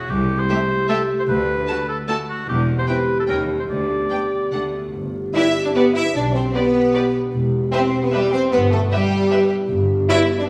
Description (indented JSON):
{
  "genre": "cinematic, playful, whimsical film cue",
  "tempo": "151 BPM",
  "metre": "3/4",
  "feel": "straight",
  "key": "G major",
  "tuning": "A4 = 440 Hz",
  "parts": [
    { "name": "warm oboe", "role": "second line", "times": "0.0-4.7 s", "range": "F#4 to D5", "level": "-27 LUFS", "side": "equal", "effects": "none" },
    { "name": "concert harp", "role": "arpeggios", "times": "0.0-10.5 s", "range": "E2 to C#6", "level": "-25 LUFS", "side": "equal", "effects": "none" },
    { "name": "rich studio cello section", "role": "bass", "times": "0.1-10.5 s", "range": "C2 to E4", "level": "-28 LUFS", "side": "equal", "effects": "none" },
    { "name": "rich studio double bass section", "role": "bass", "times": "0.1-10.0 s", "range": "E1 to Eb2", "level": "-27 LUFS", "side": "equal", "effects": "none" },
    { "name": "rich studio violin section", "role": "melody", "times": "0.5-10.2 s", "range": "D5 to A5", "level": "-34 LUFS", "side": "equal", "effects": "none" },
    { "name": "rich studio violin section", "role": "second line", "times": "0.5-10.4 s", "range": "Db4 to E5", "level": "-30 LUFS", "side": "equal", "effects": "none" },
    { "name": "clear studio viola section", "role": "accompaniment", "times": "0.5-10.2 s", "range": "A3 to B4", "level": "-31 LUFS", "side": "equal", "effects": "none" },
    { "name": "warm French horn section", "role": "sustained chords", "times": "5.3-10.5 s", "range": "G3 to E4", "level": "-23 LUFS", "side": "equal", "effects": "none" }
  ],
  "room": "wet scoring stage reverb, RT60 1.6 s",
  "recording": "small room ambience",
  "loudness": "-19 LUFS",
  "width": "mono",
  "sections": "0.0-4.9 A section; 4.9-10.5 B section",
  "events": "none",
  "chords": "0.1 Am7/C; 1.3 D; 2.5 C/E; 3.3 Eb7; 3.7 G/D; 4.5 D; 4.9 G; 6.1 G/B; 7.3 Em; 8.5 Em/G; 9.7 Gmaj7"
}